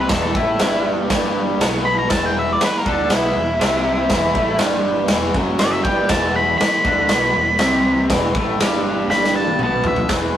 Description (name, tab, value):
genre	garage rock duo or trio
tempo	120 BPM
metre	4/4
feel	straight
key	E minor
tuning	A4 = 441 Hz
part	octave-fuzz lead guitar	melody	0.0-10.1 s	E4 to B5	-20 LUFS	equal	distortion
part	raw garage guitar	riff	0.0-10.4 s	E2 to D4	-20 LUFS	equal	overdrive
part	growling fingered electric bass	bass	0.0-10.4 s	E1 to D2	-28 LUFS	equal	overdrive, tube saturation
part	raw garage drum kit	drums	0.1-10.2 s	crash cymbal, kick drum, snare drum, toms	-19 LUFS	equal	none
room	moderate studio reverb, RT60 0.6 s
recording	rough rehearsal-room recording, warm saturation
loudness	-15 LUFS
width	side -10 dB against mid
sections	0.0-10.1 A section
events	lead electric guitar solo 0.0-10.1; drum fill 9.1-10.1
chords	0.0 Em